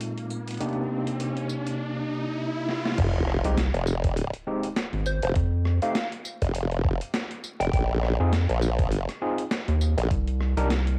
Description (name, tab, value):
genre	glitch hop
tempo	101 BPM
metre	4/4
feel	swing 56% on 16ths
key	F dorian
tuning	A4 = 438 Hz
part	overdriven tine electric piano	stabs	0.0-10.7 s	Bb2 to Bb4	-33 LUFS	equal	medium tremolo, vintage 12-bit sampler grit, sidechain pumping, cassette tape, tape echo
part	boom bap sampler-style drum kit	drums	0.0-11.0 s	crash cymbal, hi-hat, rim click, snare drum, tambourine	-35 LUFS	equal	cassette tape
part	riser and sub drop	sound effects	0.0-5.4 s	none	-34 LUFS	equal	none
part	formant-sweep wobble bass	bass	3.0-10.1 s	F1 to Bb1	-27 LUFS	equal	chorus, overdrive
part	electronic kick drum	drums	3.0-10.2 s	none	-28 LUFS	equal	cassette tape
part	rubbery square bass	bass	3.4-11.0 s	Ab1 to F2	-26 LUFS	equal	none
part	plucky unison lead	melody	5.1-7.8 s	C5 to G5	-35 LUFS	equal	tape echo
room	light reverb, digital ambience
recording	home recording on cassette, vinyl crackle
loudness	-26 LUFS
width	mono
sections	0.0-3.0 A section; 3.0-11.0 B section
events	riser 0.0-3.0; filter sweep on drum 0.0-3.0; drum fill 2.7; drop 3.0-11.0; impact 3.0-5.4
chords	0.0 Bb9sus4; 0.6 Cm9; 3.0 Fm9; 5.4 N.C.; 7.7 Bb9sus4; 10.1 Cm9